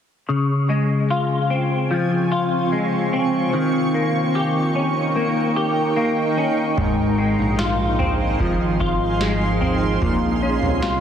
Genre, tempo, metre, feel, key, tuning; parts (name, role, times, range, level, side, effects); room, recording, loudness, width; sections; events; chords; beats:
dream pop; 74 BPM; 4/4; straight; Db lydian; A4 = 441 Hz
granular cloud pad; sustained chords; 1.3-11.0 s; Bb3 to Db6; -23 LUFS; right 2 dB; built-in reverb
semi-hollow electric guitar; arpeggios; 0.3-11.0 s; Ab2 to G4; -20 LUFS; left 2 dB; ensemble chorus, ping-pong delay
fat analog bass; bass; 6.8-11.0 s; Ab1 to C2; -24 LUFS; right 1 dB
booming analog drum machine; drums; 6.8-11.0 s; kick drum, snare drum, toms; -26 LUFS; right 2 dB
moderate lush hall reverb, RT60 2.4 s; heavily compressed radio sound; -18 LUFS; side -8 dB against mid
0.3-11.0 A section
0.3 Dbmaj7; 3.5 Eb7; 6.8 Ab6; 10.0 Bbm9
| 0.29 1.10 1.91 2.72 | 3.53 4.34 5.15 5.96 | 6.77 7.58 8.39 9.21 | 10.02 10.83